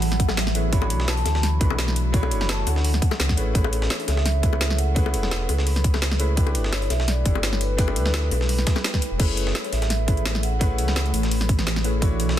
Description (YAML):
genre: liquid drum and bass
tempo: 170 BPM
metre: 4/4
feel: swing 54% on 16ths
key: F# minor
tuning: A4 = 441 Hz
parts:
  - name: vibraphone with soft mallets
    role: melody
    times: 0.0-12.4 s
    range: B4 to B5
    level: -32 LUFS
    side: right 2 dB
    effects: ping-pong delay
  - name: warm concert grand piano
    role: accompaniment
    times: 0.0-12.4 s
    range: A3 to C#5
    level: -30 LUFS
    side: left 2 dB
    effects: ping-pong delay
  - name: ethereal airy pad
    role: sustained chords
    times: 0.0-12.4 s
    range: E3 to C#5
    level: -32 LUFS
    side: equal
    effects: ensemble chorus, built-in reverb, phaser
  - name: sub bass with octave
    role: bass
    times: 0.0-12.4 s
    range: E1 to D2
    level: -23 LUFS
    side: equal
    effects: none
  - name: breakbeat sampler-style drum kit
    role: drums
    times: 0.0-12.4 s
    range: hi-hat, snare drum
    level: -33 LUFS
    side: right 1 dB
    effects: high-pass filter on hats, high-pass filter on snare
  - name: garage drum kit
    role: drums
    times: 0.0-12.3 s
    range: crash cymbal, hi-hat, snare drum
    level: -28 LUFS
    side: left 1 dB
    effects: none
  - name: electronic kick drum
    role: drums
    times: 0.2-12.1 s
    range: none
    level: -21 LUFS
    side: equal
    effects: none
  - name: bongos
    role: percussion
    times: 0.3-8.8 s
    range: none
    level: -33 LUFS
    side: left 7 dB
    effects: none
room: little or no reverb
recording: dense, heavily limited modern master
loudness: -20 LUFS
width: side -11 dB against mid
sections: 0.0-9.2 A section; 9.2-12.4 A section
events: drop 0.0-9.2, 9.2-12.4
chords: 0.0 F#m11; 0.7 Bm11; 3.4 Amaj9; 6.4 G6; 9.2 F#m11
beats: 0.02 0.37 | 0.73 1.08 1.43 1.78 | 2.14 2.49 2.84 3.20 | 3.55 3.90 4.26 4.61 | 4.96 5.31 5.67 6.02 | 6.37 6.73 7.08 7.43 | 7.79 8.14 8.49 8.84 | 9.20 9.55 9.90 10.26 | 10.61 10.96 11.31 11.67 | 12.02 12.37